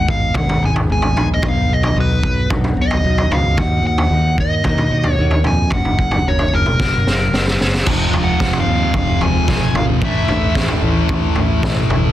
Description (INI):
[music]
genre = quiet-loud alternative rock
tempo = 112 BPM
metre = 4/4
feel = straight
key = unclear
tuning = A4 = 440 Hz
[part]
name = nasal lead guitar with a parked wah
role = melody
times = 0.0-10.5 s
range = A#4 to G#5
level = -21 LUFS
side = right 1 dB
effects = overdrive, slapback echo
[part]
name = mellow electric guitar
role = arpeggios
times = 0.0-12.1 s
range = F#2 to G#4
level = -23 LUFS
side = left 4 dB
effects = phaser
[part]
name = fingered electric bass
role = bass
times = 0.0-12.1 s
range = F1 to E#2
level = -20 LUFS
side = equal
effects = none
[part]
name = raw garage drum kit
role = drums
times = 0.1-12.0 s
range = crash cymbal, kick drum, snare drum, toms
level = -17 LUFS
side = equal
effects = none
[part]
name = fuzz guitar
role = riff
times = 7.9-12.1 s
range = F2 to A3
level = -20 LUFS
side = left 1 dB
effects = distortion
[sound]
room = studio reverb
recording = dense, heavily limited modern master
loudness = -14 LUFS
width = side -13 dB against mid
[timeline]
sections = 0.0-7.9 A section; 7.9-12.1 B section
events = drum fill 6.8-7.9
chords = 0.0 G#m; 1.4 B; 3.6 D#m; 5.7 F#; 7.9 Fm; 10.0 A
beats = 0.35 0.89 | 1.43 1.96 2.50 3.04 | 3.58 4.11 4.65 5.19 | 5.72 6.26 6.80 7.34 | 7.88 8.41 8.95 9.49 | 10.03 10.56 11.10 11.64